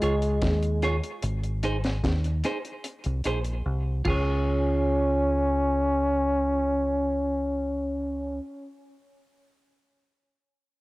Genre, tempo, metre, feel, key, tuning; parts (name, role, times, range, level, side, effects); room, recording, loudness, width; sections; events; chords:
roots reggae; 74 BPM; 4/4; straight; Db major; A4 = 440 Hz
breathy trombone; melody; 0.0-8.4 s; Ab3 to Db4; -26 LUFS; equal; cassette tape, tape echo
clean electric guitar; accompaniment; 0.0-8.5 s; Eb4 to Db5; -32 LUFS; right 2 dB; spring reverb, cassette tape, tape echo
deep dub fingered electric bass; bass; 0.0-8.4 s; Ab1 to Eb2; -28 LUFS; equal
deep reggae drum kit; drums; 0.0-4.3 s; crash cymbal, hi-hat, kick drum, snare drum; -31 LUFS; equal; cassette tape, tape echo
light reverb; home recording on cassette; -24 LUFS; side -20 dB against mid
0.0-4.5 A section; 4.5-7.7 B section
drums muted 3.7-4.5
0.0 Db; 1.2 Ab; 4.1 Db